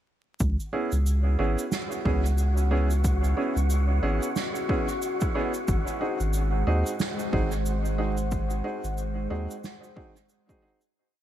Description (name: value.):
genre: ambient dub.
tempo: 91 BPM.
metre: 4/4.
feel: swing 59% on 16ths.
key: C# minor.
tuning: A4 = 440 Hz.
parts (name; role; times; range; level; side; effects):
deep dark ambient pad; sustained chords; 2.3-11.0 s; G#3 to F#5; -36 LUFS; right 1 dB; chorus, built-in reverb.
warm sub bass; bass; 0.4-9.5 s; G#1 to D#2; -24 LUFS; equal; none.
cabasa and snare drum; drums; 0.4-10.9 s; none; -34 LUFS; right 4 dB; dub echo.
electronic kick drum; drums; 0.4-10.6 s; none; -29 LUFS; equal; overdrive.
wind-like tuned noise texture; texture; 1.2-11.0 s; F#4 to F#5; -35 LUFS; left 3 dB; built-in reverb.
clear upright piano; stabs; 0.7-10.8 s; B3 to G#4; -31 LUFS; right 2 dB; dub echo.
room: small room ambience.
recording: vinyl crackle.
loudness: -24 LUFS.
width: side -12 dB against mid.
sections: 0.4-11.0 groove.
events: fade-in on ambient pad 0.4-11.0; fade-out 7.4-11.0.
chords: 0.4 C#m7; 5.7 G#7.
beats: | 0.40 1.06 1.72 2.38 | 3.04 3.70 4.36 5.02 | 5.68 6.34 7.00 7.66 | 8.32 8.97 9.63 10.29.